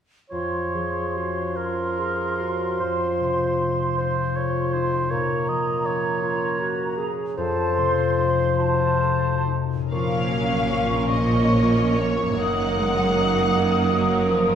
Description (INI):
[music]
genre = classical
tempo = 43-55 BPM (dotted quarters)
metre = 6/8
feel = rubato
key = Bb minor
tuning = A4 = 441 Hz
[part]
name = bright large flute ensemble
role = second line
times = 0.3-14.6 s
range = A5 to Eb6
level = -29 LUFS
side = equal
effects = none
[part]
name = warm clarinet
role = second line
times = 0.3-9.5 s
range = F4 to A4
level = -30 LUFS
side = left 1 dB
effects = none
[part]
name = warm oboe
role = second line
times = 0.3-9.6 s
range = Bb4 to Eb5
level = -27 LUFS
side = equal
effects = none
[part]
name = mellow bassoon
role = accompaniment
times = 0.3-14.6 s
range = F3 to Bb3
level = -26 LUFS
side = right 2 dB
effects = none
[part]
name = concert harp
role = arpeggios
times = 0.3-14.6 s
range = F2 to Bb4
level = -28 LUFS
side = left 6 dB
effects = none
[part]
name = warm studio violin section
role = melody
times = 9.9-14.3 s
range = Db5 to Gb5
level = -28 LUFS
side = left 2 dB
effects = none
[part]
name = rich chamber violin section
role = second line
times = 9.9-14.6 s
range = Db4 to Db5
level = -30 LUFS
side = left 2 dB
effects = none
[part]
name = rich chamber viola section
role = accompaniment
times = 9.9-14.6 s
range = Eb3 to Db4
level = -27 LUFS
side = right 2 dB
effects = none
[part]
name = rich chamber cello section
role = bass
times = 9.9-14.6 s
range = Gb2 to Bb2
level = -25 LUFS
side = right 2 dB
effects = none
[part]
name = warm studio double bass section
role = bass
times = 9.9-14.6 s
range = Gb1 to Bb1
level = -27 LUFS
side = right 2 dB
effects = none
[sound]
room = wet recital hall reverb, RT60 1.6 s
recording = heard from further back in the room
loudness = -20 LUFS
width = side -8 dB against mid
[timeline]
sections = 0.3-9.9 A section; 9.9-14.6 B section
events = none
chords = 0.3 Bbm/F; 2.8 F7; 5.1 Bbm; 7.4 F7b9; 9.9 Bbm; 12.4 Ebm/Gb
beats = | 0.32 1.58 | 2.80 3.98 | 5.11 6.23 | 7.37 8.59 | 9.91 11.11 | 12.39 13.54